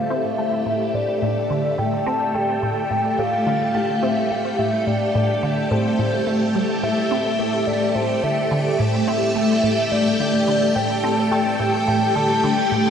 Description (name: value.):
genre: ambient, sequencer-driven space music.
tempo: 107 BPM.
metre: 4/4.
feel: straight.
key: A minor.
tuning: A4 = 440 Hz.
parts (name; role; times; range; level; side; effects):
soft octave-layered synth lead; melody; 0.0-12.9 s; C5 to A5; -22 LUFS; left 1 dB; chorus, analog delay.
string machine, full ensemble; sustained chords; 0.0-12.9 s; A3 to G5; -21 LUFS; equal; phaser, ensemble chorus.
bubbling stepped-filter texture; texture; 0.0-12.9 s; none; barely audible; none; none.
resonant blip pluck; riff; 0.1-12.9 s; A2 to C4; -25 LUFS; right 1 dB; phaser, ensemble chorus, analog delay.
room: wet huge ambient reverb, RT60 7.2 s.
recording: dreamy mix soaked in reverb.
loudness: -18 LUFS.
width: side -8 dB against mid.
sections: 0.0-12.9 A section.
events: none.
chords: 0.0 Am7.